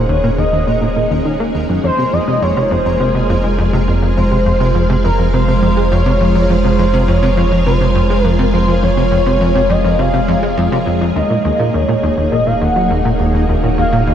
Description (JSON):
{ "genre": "ambient, sequencer-driven space music", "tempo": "103 BPM", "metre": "4/4", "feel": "straight", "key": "unclear", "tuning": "A4 = 437 Hz", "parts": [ { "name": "expressive portamento lead", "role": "melody", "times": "0.0-14.1 s", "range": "Bb4 to Gb5", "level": "-17 LUFS", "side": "equal", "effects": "analog chorus, ping-pong delay" }, { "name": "string machine, full ensemble", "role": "sustained chords", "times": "0.0-14.1 s", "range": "Ab3 to Gb5", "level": "-18 LUFS", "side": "equal", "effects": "ensemble chorus" }, { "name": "plucky analog bass", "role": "riff", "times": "0.0-14.1 s", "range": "Eb2 to Bb3", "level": "-16 LUFS", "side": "equal", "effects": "wide subtle chorus, ping-pong delay" }, { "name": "round analog bass", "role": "bass", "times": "0.0-14.1 s", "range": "Eb1 to F1", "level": "-18 LUFS", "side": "equal", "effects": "tube saturation" }, { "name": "pulsing gated texture", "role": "texture", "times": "0.0-14.1 s", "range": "Eb4 to Bb5", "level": "-32 LUFS", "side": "equal", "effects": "chorus, built-in reverb" } ], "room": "wet huge ambient reverb, RT60 7.9 s", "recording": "dark, warm production", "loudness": "-12 LUFS", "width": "side -9 dB against mid", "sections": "0.0-14.1 A section", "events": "fade-in on synth texture 0.0-14.1", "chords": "0.0 Ebm; 1.8 Fm; 11.2 Ebm", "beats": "0.09 0.67 1.25 | 1.84 2.42 3.00 3.58 | 4.17 4.75 5.33 5.92 | 6.50 7.08 7.66 8.24 | 8.83 9.41 9.99 10.58 | 11.16 11.74 12.32 12.91 | 13.49 14.07" }